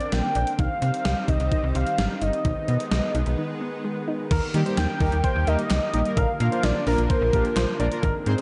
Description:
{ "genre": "synth-pop", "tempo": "129 BPM", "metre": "4/4", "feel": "straight", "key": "Eb major", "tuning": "A4 = 440 Hz", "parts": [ { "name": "warm velvety synth lead", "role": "melody", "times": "0.0-7.8 s", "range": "Bb4 to G5", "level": "-30 LUFS", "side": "equal", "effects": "chorus" }, { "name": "lush unison pad", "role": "sustained chords", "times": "0.0-8.4 s", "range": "D3 to C4", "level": "-34 LUFS", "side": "equal", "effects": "chorus" }, { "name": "analog pluck", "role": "arpeggios", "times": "0.0-8.2 s", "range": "D3 to Eb4", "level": "-36 LUFS", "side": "equal", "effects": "chorus, tape echo" }, { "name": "gated 80s digital drum machine", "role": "drums", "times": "0.0-8.4 s", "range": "crash cymbal, handclaps, hi-hat, kick drum, snare drum", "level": "-29 LUFS", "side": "equal", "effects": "gated reverb, gated reverb snare" }, { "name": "slap-like FM bass", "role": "bass", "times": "0.1-8.4 s", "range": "G1 to Eb3", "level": "-26 LUFS", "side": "equal", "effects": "none" }, { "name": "warm grand piano", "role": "second line", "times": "4.3-8.4 s", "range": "Bb4 to D5", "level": "-32 LUFS", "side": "equal", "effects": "tape echo" }, { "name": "analog synth brass", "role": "accompaniment", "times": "4.5-8.4 s", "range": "G3 to C5", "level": "-32 LUFS", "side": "equal", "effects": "chorus" } ], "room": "moderate digital room reverb, RT60 1.4 s, digital ambience", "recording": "dark, warm production, nothing above 10.9 kHz", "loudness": "-24 LUFS", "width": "mono", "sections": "0.0-4.3 A section; 4.3-8.4 B section", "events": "break 3.4-4.3", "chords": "0.0 Bbadd9; 0.6 Cm; 2.4 B6; 4.3 Eb; 6.2 Bb", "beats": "0.12 | 0.59 1.05 1.52 1.98 | 2.45 2.91 3.38 3.84 | 4.31 4.77 5.24 5.70 | 6.17 6.63 7.10 7.57 | 8.03" }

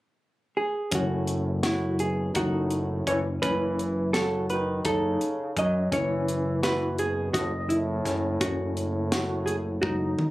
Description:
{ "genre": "progressive instrumental, band music in an uneven meter", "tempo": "168 BPM (eighths)", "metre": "7/8", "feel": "straight", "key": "F# dorian", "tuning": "A4 = 440 Hz", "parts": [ { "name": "hollow-body jazz guitar", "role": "melody", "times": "0.6-10.3 s", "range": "E4 to D#5", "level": "-29 LUFS", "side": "right 1 dB", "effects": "none" }, { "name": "clear trombone", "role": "second line", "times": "0.9-10.3 s", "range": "A2 to F#3", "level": "-32 LUFS", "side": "equal", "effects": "none" }, { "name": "barky tine electric piano", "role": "arpeggios", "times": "0.9-10.2 s", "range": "C#4 to D#5", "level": "-33 LUFS", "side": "left 2 dB", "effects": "overdrive, fast tremolo, digital delay" }, { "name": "fat analog bass", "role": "bass", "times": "0.9-10.2 s", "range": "F#1 to F#2", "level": "-29 LUFS", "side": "equal", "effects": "none" }, { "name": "tight funk drum kit", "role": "drums", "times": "0.9-10.3 s", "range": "hi-hat, kick drum, snare drum, toms", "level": "-30 LUFS", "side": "equal", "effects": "none" } ], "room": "light reverb", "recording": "recorded on a phone in the room, club ambience, compression", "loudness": "-24 LUFS", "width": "side -17 dB against mid", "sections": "0.9-10.3 A section", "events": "drum fill 9.8-10.3", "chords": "0.0 N.C.; 0.9 F#m7", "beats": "0.21 0.57 | 0.92 1.28 1.64 2.00 2.35 2.71 3.07 | 3.42 3.78 4.14 4.49 4.85 5.21 5.56 | 5.92 6.28 6.63 6.99 7.34 7.70 8.06 | 8.41 8.77 9.12 9.48 9.83 10.19" }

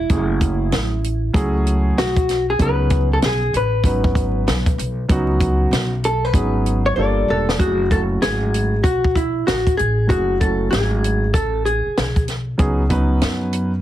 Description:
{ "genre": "hip hop, jazz-hop", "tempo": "96 BPM", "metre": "4/4", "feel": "swing 63% on 16ths", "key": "F# dorian", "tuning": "A4 = 440 Hz", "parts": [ { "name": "vintage hollow-body jazz guitar", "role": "melody", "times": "0.0-12.2 s", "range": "E4 to D5", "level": "-21 LUFS", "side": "equal", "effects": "plate reverb" }, { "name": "upright bass", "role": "bass", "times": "0.0-13.8 s", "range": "E1 to F#2", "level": "-21 LUFS", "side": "equal", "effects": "none" }, { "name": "dark concert grand piano", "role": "accompaniment", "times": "0.1-13.7 s", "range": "F#3 to B4", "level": "-22 LUFS", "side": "right 1 dB", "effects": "plate reverb" }, { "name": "compact cocktail drum kit", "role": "drums", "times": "0.1-13.7 s", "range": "hi-hat, kick drum, snare drum", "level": "-20 LUFS", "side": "equal", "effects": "none" } ], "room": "light reverb", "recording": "heavily compressed radio sound, multiband compression, vinyl crackle", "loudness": "-16 LUFS", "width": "side -12 dB against mid", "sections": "0.0-7.6 A section; 7.6-13.8 B section", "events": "hollow-body jazz guitar solo 0.0-7.6; drum fill 7.0-7.6", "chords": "0.0 F#m9; 2.6 C#7sus4; 7.0 Gm9; 7.6 F#m9; 12.6 C#7sus4", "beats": "| 0.10 0.72 1.35 1.97 | 2.60 3.22 3.85 4.47 | 5.10 5.72 6.35 6.97 | 7.60 8.22 8.85 9.47 | 10.10 10.72 11.35 11.97 | 12.60 13.22" }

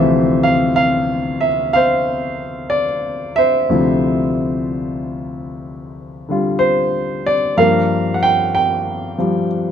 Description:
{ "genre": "solo jazz", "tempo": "62 BPM", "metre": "4/4", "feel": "swing 68% on 8ths", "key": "D minor", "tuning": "A4 = 436 Hz", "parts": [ { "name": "warm baby grand piano", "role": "solo", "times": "0.0-9.7 s", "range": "D2 to G5", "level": "-15 LUFS", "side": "equal", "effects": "none" } ], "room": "light reverb", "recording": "none", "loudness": "-15 LUFS", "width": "side -8 dB against mid", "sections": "0.0-9.7 A section", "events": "none", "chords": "0.0 Dm9; 7.6 Gm7", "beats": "0.77 1.74 2.72 | 3.69 4.66 5.63 6.60 | 7.57 8.54 9.50" }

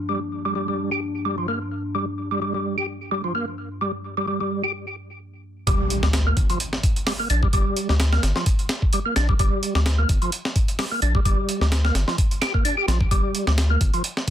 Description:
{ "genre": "breakbeat, breaks", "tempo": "129 BPM", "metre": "4/4", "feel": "swing 55% on 16ths", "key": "G minor", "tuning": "A4 = 440 Hz", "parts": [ { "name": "warbly tape-like pad", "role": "sustained chords", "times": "0.0-5.7 s", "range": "G2 to D4", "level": "-31 LUFS", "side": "left 1 dB", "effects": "chorus, built-in reverb, vintage 12-bit sampler grit, sidechain pumping" }, { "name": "percussive tonewheel organ", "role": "riff", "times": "0.1-14.0 s", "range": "F3 to G4", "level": "-25 LUFS", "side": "right 1 dB", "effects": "chorus vibrato, fast rotary speaker, tube saturation, low-pass filter, digital delay" }, { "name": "saturated sub bass", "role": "bass", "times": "5.7-13.9 s", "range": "G1 to D2", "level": "-20 LUFS", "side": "equal", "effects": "none" }, { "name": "breakbeat sampler-style drum kit", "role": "drums", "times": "5.7-14.3 s", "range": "hi-hat, kick drum, snare drum", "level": "-22 LUFS", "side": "equal", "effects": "soft clipping on snare" }, { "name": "impact", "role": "sound effects", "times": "5.7-7.5 s", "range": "none", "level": "-30 LUFS", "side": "equal", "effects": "none" } ], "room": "light reverb", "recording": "dense, heavily limited modern master", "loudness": "-20 LUFS", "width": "side -11 dB against mid", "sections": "0.0-5.7 A section; 5.7-14.3 B section", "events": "break 4.7-5.7; drop 5.7-14.3; impact 5.7-7.5", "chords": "0.0 Gm7", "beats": "| 0.09 0.56 1.02 1.49 | 1.95 2.42 2.88 3.35 | 3.81 4.28 4.74 5.21 | 5.67 6.14 6.60 7.07 | 7.53 8.00 8.46 8.93 | 9.39 9.86 10.32 10.79 | 11.25 11.72 12.18 12.65 | 13.11 13.58 14.04" }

